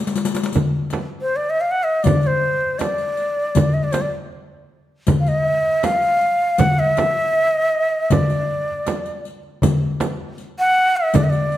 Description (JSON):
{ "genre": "Arabic maqam ensemble", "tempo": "79 BPM", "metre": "4/4", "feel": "straight", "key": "D maqam saba", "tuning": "A4 = 440 Hz", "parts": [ { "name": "darbuka", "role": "percussion", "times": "0.1-11.6 s", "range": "none", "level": "-20 LUFS", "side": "left 2 dB", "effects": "none" }, { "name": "riq", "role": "percussion", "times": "0.1-11.6 s", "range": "none", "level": "-27 LUFS", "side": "left 5 dB", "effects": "none" }, { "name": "frame drum", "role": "percussion", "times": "0.6-11.3 s", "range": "none", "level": "-23 LUFS", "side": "right 4 dB", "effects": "none" }, { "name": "breathy ney", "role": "melody", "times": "1.2-11.6 s", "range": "C5 to F#5", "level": "-18 LUFS", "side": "equal", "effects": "none" } ], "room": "wet recital hall reverb, RT60 1.6 s", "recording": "none", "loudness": "-16 LUFS", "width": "side -13 dB against mid", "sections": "0.5-11.6 A section", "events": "drum fill 0.0-0.5", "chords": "none" }